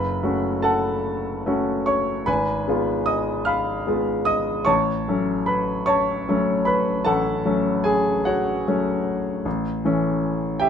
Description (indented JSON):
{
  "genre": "classical, romantic nocturne for solo piano",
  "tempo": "50 BPM (dotted quarters)",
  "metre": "12/8",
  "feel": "rubato",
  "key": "F# minor",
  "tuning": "A4 = 440 Hz",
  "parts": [
    { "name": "bright grand piano", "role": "solo", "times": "0.0-10.7 s", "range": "F#1 to F6", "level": "-20 LUFS", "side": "equal", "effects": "none" }
  ],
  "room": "light reverb",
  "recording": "minimal, uncompressed stereo recording",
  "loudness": "-20 LUFS",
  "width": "side -8 dB against mid",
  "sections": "0.0-10.7 A section",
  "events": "none",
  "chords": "0.0 F#m; 2.3 Fdim/Ab; 4.7 F#m/A; 9.5 A7"
}